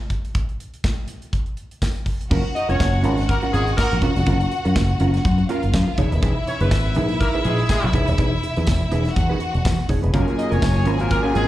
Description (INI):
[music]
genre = disco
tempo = 123 BPM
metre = 4/4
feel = swing 56% on 16ths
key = F# major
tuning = A4 = 440 Hz
[part]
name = modern studio drum kit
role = drums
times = 0.1-11.5 s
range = crash cymbal, hi-hat, kick drum, snare drum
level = -23 LUFS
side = equal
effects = none
[part]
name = tambourine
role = percussion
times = 0.8-10.8 s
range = none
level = -40 LUFS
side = left 2 dB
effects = none
[part]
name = clear studio string section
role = second line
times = 2.3-11.5 s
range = E4 to G#5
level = -27 LUFS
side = left 1 dB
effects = slapback echo
[part]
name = mellow electric guitar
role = accompaniment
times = 2.3-11.5 s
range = C#4 to C#5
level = -26 LUFS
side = right 3 dB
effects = wide subtle chorus, slapback echo
[part]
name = fingered electric bass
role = bass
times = 2.3-11.5 s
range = D#1 to F#2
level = -20 LUFS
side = equal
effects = none
[part]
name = warm horn section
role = stabs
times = 2.6-11.5 s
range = G#3 to D#5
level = -26 LUFS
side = equal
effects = slapback echo
[part]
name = overdriven tine electric piano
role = accompaniment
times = 10.1-11.5 s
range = F#3 to A#4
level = -24 LUFS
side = left 2 dB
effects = tube saturation, slapback echo
[sound]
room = studio reverb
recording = live gig heard through the venue's PA, club reverb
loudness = -18 LUFS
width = side -14 dB against mid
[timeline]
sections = 0.0-2.3 A section; 2.3-11.5 B section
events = none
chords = 0.0 N.C.; 2.3 F#maj7; 6.0 Emaj7; 10.1 F#maj7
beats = | 0.35 0.84 1.33 1.82 | 2.31 2.80 3.29 3.78 | 4.27 4.76 5.25 5.74 | 6.23 6.72 7.21 7.69 | 8.18 8.67 9.16 9.65 | 10.14 10.63 11.12